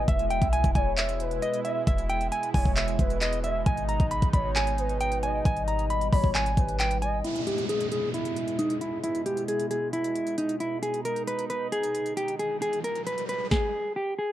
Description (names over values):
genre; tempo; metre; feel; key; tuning
hip hop, trap; 134 BPM; 4/4; half-time; unclear; A4 = 440 Hz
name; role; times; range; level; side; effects
mellow electric guitar; melody; 0.0-14.3 s; D#4 to B5; -28 LUFS; equal; low-pass filter, tape echo
gliding portamento lead; second line; 0.0-7.2 s; B4 to E5; -32 LUFS; left 2 dB; chorus, phaser, tape echo
warm analog pad; sustained chords; 0.0-13.5 s; B2 to E4; -35 LUFS; right 3 dB; chorus, tremolo, low-pass filter
clean 808-style bass; bass; 0.0-7.2 s; E1 to B1; -29 LUFS; equal; none
trap drum kit; drums; 0.1-13.6 s; handclaps, hi-hat, kick drum, snare drum; -28 LUFS; equal; overdrive
downlifter and riser; sound effects; 7.2-13.5 s; none; -38 LUFS; equal; none
room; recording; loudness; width
light reverb; dark, warm production; -24 LUFS; side -13 dB against mid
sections
0.0-7.2 A section; 7.2-14.3 B section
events
filter sweep 7.2-14.3; riser 11.7-14.3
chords
0.1 E; 3.7 G#m; 7.2 E; 10.8 G#m